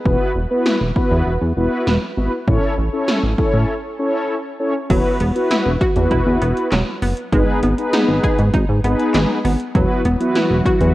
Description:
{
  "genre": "synth-pop",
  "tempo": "99 BPM",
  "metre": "4/4",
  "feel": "straight",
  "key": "E major",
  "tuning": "A4 = 440 Hz",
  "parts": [
    { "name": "mellow synth brass", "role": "accompaniment", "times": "0.1-10.9 s", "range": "B3 to C#5", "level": "-19 LUFS", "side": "left 1 dB", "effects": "chorus" },
    { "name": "chorused synth bass", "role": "bass", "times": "0.1-10.9 s", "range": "E1 to A2", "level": "-18 LUFS", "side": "equal", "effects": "none" },
    { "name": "80s electronic pad drums", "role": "drums", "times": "0.1-10.9 s", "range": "crash cymbal, handclaps, hi-hat, kick drum, snare drum", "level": "-20 LUFS", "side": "equal", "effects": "none" },
    { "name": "analog pluck", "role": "arpeggios", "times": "4.9-10.9 s", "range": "F#3 to G#4", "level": "-23 LUFS", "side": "right 1 dB", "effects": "chorus, analog delay" },
    { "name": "phased analog pad", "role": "sustained chords", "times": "10.0-10.9 s", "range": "E3 to F#4", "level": "-22 LUFS", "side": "equal", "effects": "phaser, chorus" }
  ],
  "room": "moderate lush hall reverb, RT60 2.4 s",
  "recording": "worn, warbling old tape, cassette tape, warbly pitch drift",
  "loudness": "-15 LUFS",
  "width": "side -16 dB against mid",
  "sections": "0.0-4.9 A section; 4.9-10.9 B section",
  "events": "break 3.7-4.9",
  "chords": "0.1 Esus2; 2.5 A; 4.9 Esus2; 7.3 G#m; 9.7 Esus2"
}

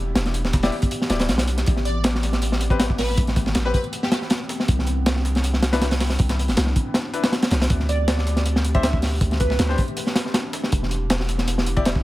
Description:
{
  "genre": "drum and bass, jungle",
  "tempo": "159 BPM",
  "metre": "4/4",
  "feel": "swing 54% on 16ths",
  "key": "E minor",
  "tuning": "A4 = 440 Hz",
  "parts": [
    { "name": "warbly tape-like pad", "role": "sustained chords", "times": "0.0-12.0 s", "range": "A3 to G4", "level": "-32 LUFS", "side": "equal", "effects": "chorus, built-in reverb" },
    { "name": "long sustained 808-style bass", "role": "bass", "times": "0.0-12.0 s", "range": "D1 to D2", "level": "-23 LUFS", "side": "equal", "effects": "none" },
    { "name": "breakbeat sampler-style drum kit", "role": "drums", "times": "0.2-11.9 s", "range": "hi-hat, snare drum", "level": "-35 LUFS", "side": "equal", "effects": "none" },
    { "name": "crunchy breakbeat drum kit", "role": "drums", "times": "0.2-12.0 s", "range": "hi-hat, kick drum, snare drum", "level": "-22 LUFS", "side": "equal", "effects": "none" },
    { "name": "clear grand piano", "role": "stabs", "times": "0.6-11.9 s", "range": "C4 to D5", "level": "-31 LUFS", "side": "left 5 dB", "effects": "dub echo" },
    { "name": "plucky unison lead", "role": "melody", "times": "1.9-4.2, 7.9-9.8 s", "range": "G4 to E5", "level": "-31 LUFS", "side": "right 2 dB", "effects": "lush chorus, dub echo" }
  ],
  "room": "small room ambience",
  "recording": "none",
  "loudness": "-19 LUFS",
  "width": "side -17 dB against mid",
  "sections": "0.0-12.0 A section",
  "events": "none",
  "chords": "0.0 Em7; 1.7 Am9; 4.7 Cmaj9; 7.7 D7sus4; 10.7 Em7"
}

